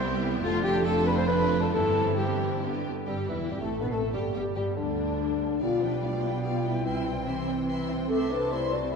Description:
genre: quick classical-period movement for symphony orchestra.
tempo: 143 BPM.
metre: 3/4.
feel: rubato.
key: C major.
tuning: A4 = 440 Hz.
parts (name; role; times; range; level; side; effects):
rich chamber violin section; melody; 0.0-9.0 s; D4 to C6; -38 LUFS; left 4 dB; none.
concert flute; second line; 0.0-9.0 s; D4 to D6; -36 LUFS; equal; none.
rich studio violin section; second line; 0.0-9.0 s; B3 to E5; -38 LUFS; left 3 dB; none.
warm clarinet; second line; 0.0-9.0 s; E3 to C5; -32 LUFS; left 1 dB; none.
rich studio viola section; accompaniment; 0.0-8.9 s; D3 to E4; -36 LUFS; right 2 dB; none.
clear studio cello section; bass; 0.0-9.0 s; C2 to C3; -34 LUFS; right 5 dB; none.
rich studio double bass section; bass; 0.0-9.0 s; E1 to D2; -34 LUFS; right 3 dB; none.
mellow French horn section; sustained chords; 0.4-8.9 s; A3 to D5; -30 LUFS; left 3 dB; none.
warm bassoon; accompaniment; 3.1-9.0 s; D3 to B3; -37 LUFS; right 2 dB; none.
room: wet scoring stage reverb, RT60 2.1 s.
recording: heard from further back in the room.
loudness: -25 LUFS.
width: side -5 dB against mid.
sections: 0.0-3.1 A section; 3.1-9.0 B section.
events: none.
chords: 0.4 Dm/F; 1.7 C/G; 2.6 G; 3.1 Am9/E; 4.4 G5; 5.6 G7/B; 6.8 C; 8.1 Am/C.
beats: 0.01 | 0.43 0.85 1.28 | 1.73 2.18 2.63 | 3.08 3.51 3.93 | 4.35 4.78 5.20 | 5.62 6.03 6.44 | 6.85 7.27 7.69 | 8.10 8.52 8.93.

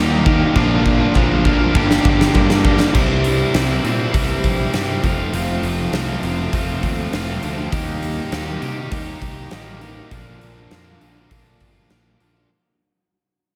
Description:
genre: classic rock.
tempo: 100 BPM.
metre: 4/4.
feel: straight.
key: unclear.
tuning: A4 = 440 Hz.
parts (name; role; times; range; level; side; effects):
crunchy overdriven guitar; riff; 0.0-12.5 s; G2 to F4; -25 LUFS; equal; slapback echo.
crunchy overdriven guitar; riff; 0.0-2.9 s; G2 to Eb4; -26 LUFS; equal; none.
overdriven electric guitar; riff; 0.0-12.5 s; F2 to G4; -26 LUFS; equal; slapback echo.
fuzz picked electric bass; bass; 0.0-12.4 s; F1 to C3; -25 LUFS; equal; overdrive.
huge arena drum kit; drums; 0.3-12.3 s; crash cymbal, hi-hat, kick drum, snare drum; -23 LUFS; equal; none.
group handclap; percussion; 1.2-2.5 s; none; barely audible; none; none.
room: moderate lush hall reverb, RT60 1.7 s, studio reverb.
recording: big arena sound.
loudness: -18 LUFS.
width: mono.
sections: 0.0-2.9 A section; 2.9-12.5 B section.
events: drum fill 0.6-2.9; fade-out 2.9-12.5.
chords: 0.0 Eb; 0.6 Bb; 1.7 Gm; 2.9 C; 5.0 F; 7.7 Eb; 10.1 Bb.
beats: | 0.56 1.15 1.75 2.35 | 2.94 3.54 4.13 4.73 | 5.33 5.93 6.53 7.12 | 7.72 8.32 8.92 9.51 | 10.11 10.71 11.31 11.90.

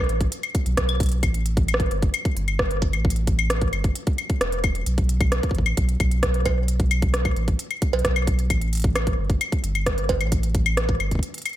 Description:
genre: IDM.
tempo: 132 BPM.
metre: 4/4.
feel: straight.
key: unclear.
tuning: A4 = 439 Hz.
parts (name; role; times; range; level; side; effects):
warm sub bass; bass; 0.0-11.2 s; E1 to B1; -23 LUFS; equal; tube saturation.
organic electronic drum kit; drums; 0.0-11.6 s; claves, cowbell, hi-hat, rim click; -25 LUFS; equal; ping-pong delay.
electronic kick drum; drums; 0.2-11.2 s; none; -24 LUFS; equal; none.
room: little or no reverb.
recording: none.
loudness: -20 LUFS.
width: side -13 dB against mid.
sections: 0.0-11.6 A section.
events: break 11.2-11.6.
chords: none.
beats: 0.32 0.77 | 1.23 1.68 2.14 2.59 | 3.05 3.50 3.96 4.41 | 4.87 5.32 5.77 6.23 | 6.68 7.14 7.59 8.05 | 8.50 8.96 9.41 9.87 | 10.32 10.77 11.23.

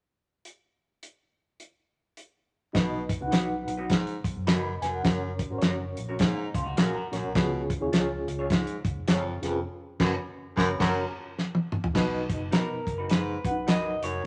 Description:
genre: uptempo 1960s-style soul.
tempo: 104 BPM.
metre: 4/4.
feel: swing 60% on 8ths.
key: B lydian.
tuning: A4 = 440 Hz.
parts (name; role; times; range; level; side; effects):
warm soul drum kit; drums; 0.5-14.1 s; crash cymbal, hi-hat, kick drum, snare drum, toms; -29 LUFS; equal; none.
reed electric piano; accompaniment; 2.7-14.3 s; B2 to B5; -35 LUFS; equal; fast tremolo.
breathy baritone saxophone; riff; 2.7-14.3 s; E#2 to B2; -36 LUFS; equal; none.
vintage muted fingered electric bass; bass; 2.7-14.2 s; E#1 to B2; -39 LUFS; equal; none.
electric guitar through a small old amp; stabs; 3.3-13.8 s; C#4 to C#5; -39 LUFS; equal; none.
semi-hollow electric guitar; riff; 6.2-7.3, 10.8-11.0 s; A#3 to A#4; -39 LUFS; equal; none.
electric guitar through a small old amp; melody; 12.5-14.3 s; A#4 to D#5; -35 LUFS; equal; none.
room: moderate large studio reverb, RT60 1.4 s.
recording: none.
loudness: -28 LUFS.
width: mono.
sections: 0.4-2.7 A section; 2.7-12.0 B section; 12.0-14.3 C section.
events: band accent 9.7-12.0; reed electric piano fill 10.8-12.0; drum fill 11.4-12.0.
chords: 0.4 N.C.; 2.7 B; 5.0 F#; 7.3 C#; 9.7 F#sus4; 10.8 F#; 12.0 B.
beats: | 0.45 1.02 1.60 2.17 | 2.75 3.32 3.90 4.47 | 5.05 5.62 6.20 6.77 | 7.35 7.92 8.50 9.07 | 9.65 10.22 10.80 11.38 | 11.95 12.53 13.10 13.68 | 14.25.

